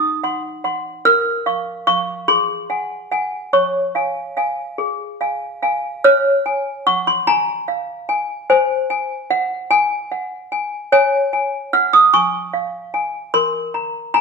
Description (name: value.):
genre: classical, lullaby for toy piano.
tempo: 49 BPM (dotted quarters).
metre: 6/8.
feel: straight.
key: Db major.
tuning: A4 = 440 Hz.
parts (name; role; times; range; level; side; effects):
toy piano; solo; 0.0-14.2 s; Eb4 to F6; -16 LUFS; equal; none.
room: wet stone room reverb, RT60 1.1 s.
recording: band playing live in one room.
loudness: -16 LUFS.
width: side -4 dB against mid.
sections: 0.0-6.0 A section; 6.0-14.2 B section.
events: none.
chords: 0.0 Ab7 (rootless); 1.1 Bbm; 2.3 Ab7; 3.5 Db; 8.5 Ab7/C; 10.9 Db; 13.3 N.C..